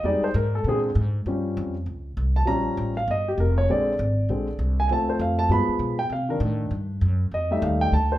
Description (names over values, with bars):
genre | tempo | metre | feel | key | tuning
jazz, big band swing | 198 BPM | 4/4 | swing 61% on 8ths | unclear | A4 = 439 Hz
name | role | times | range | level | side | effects
warm grand piano | accompaniment | 0.0-8.2 s | D3 to B5 | -24 LUFS | equal | none
upright bass | bass | 0.0-8.2 s | F1 to C3 | -24 LUFS | equal | none
room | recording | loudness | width
moderate large studio reverb, RT60 0.9 s | minimal, uncompressed stereo recording | -21 LUFS | side -14 dB against mid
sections
0.0-8.2 A section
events
grand piano solo 0.0-8.2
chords
0.0 Fm7; 0.6 Bb9; 1.3 Gm9b5; 3.7 Bb9; 4.9 Dm7; 5.5 G7b9; 6.1 Cm; 7.3 F9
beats
| 0.04 0.34 0.65 0.95 | 1.26 1.56 1.87 2.17 | 2.48 2.78 3.08 3.39 | 3.69 4.00 4.30 4.60 | 4.91 5.21 5.51 5.82 | 6.12 6.42 6.72 7.03 | 7.33 7.63 7.94